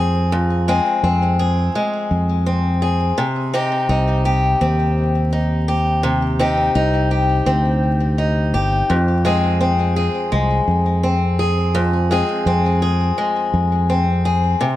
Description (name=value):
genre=folktronica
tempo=84 BPM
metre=4/4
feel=straight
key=F dorian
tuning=A4 = 440 Hz
part: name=picked old ladder-braced acoustic guitar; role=arpeggios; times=0.0-14.8 s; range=F2 to Ab4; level=-18 LUFS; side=left 1 dB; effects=ping-pong delay
part: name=fingered electric bass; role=bass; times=0.0-14.5 s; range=G1 to F2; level=-18 LUFS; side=equal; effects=none
room=light reverb, small room ambience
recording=vinyl crackle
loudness=-15 LUFS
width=side -14 dB against mid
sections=0.0-14.8 A section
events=none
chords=0.0 Fm; 3.2 Cm; 8.9 Fm